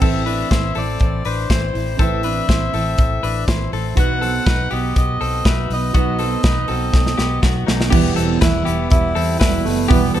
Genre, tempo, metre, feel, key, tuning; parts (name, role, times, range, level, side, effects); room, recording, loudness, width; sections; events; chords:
jangly indie pop; 121 BPM; 4/4; straight; A4 = 440 Hz
melodica; melody; 0.0-10.2 s; A3 to F#5; -24 LUFS; left 1 dB
picked steel-string acoustic guitar; accompaniment; 0.0-10.2 s; E2 to F#4; -24 LUFS; right 6 dB
warm upright piano; accompaniment; 0.0-10.2 s; B3 to B4; -28 LUFS; right 9 dB
direct-recorded clean electric guitar; arpeggios; 0.0-10.2 s; F#3 to C5; -25 LUFS; left 8 dB
vintage muted fingered electric bass; bass; 0.0-10.2 s; E1 to E2; -23 LUFS; equal
modern studio drum kit; drums; 0.0-10.2 s; crash cymbal, hi-hat, kick drum, snare drum; -18 LUFS; equal
little or no reverb; dark, warm production; -15 LUFS; side -11 dB against mid
0.0-7.9 A section; 7.9-10.2 B section
drum fill 6.9-7.9
0.0 Am; 4.0 B; 7.9 Em